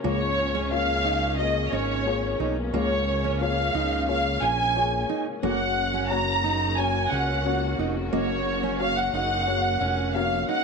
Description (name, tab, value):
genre	pop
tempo	89 BPM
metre	4/4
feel	straight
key	F# major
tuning	A4 = 440 Hz
part	dark upright piano	accompaniment	0.0-10.6 s	G#2 to D#5	-29 LUFS	left 9 dB	none
part	warm studio string section	sustained chords	0.0-10.6 s	C#3 to F#4	-38 LUFS	left 1 dB	none
part	fingerpicked steel-string acoustic guitar	riff	0.0-10.6 s	A#3 to D#4	-31 LUFS	right 14 dB	none
part	fat analog bass	bass	0.0-10.4 s	E#1 to C#2	-29 LUFS	right 1 dB	none
part	warm studio violin section	melody	0.1-10.6 s	C#5 to A#5	-26 LUFS	right 1 dB	none
room	moderate spring reverb, RT60 1.3 s, small room reverb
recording	1960s-style stereo with parts hard left and right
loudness	-22 LUFS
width	side -4 dB against mid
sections	0.0-10.6 A section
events	none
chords	0.0 C#6; 5.4 F#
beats	| 0.04 0.71 1.39 2.06 | 2.74 3.41 4.08 4.76 | 5.43 6.11 6.78 7.46 | 8.13 8.80 9.48 10.15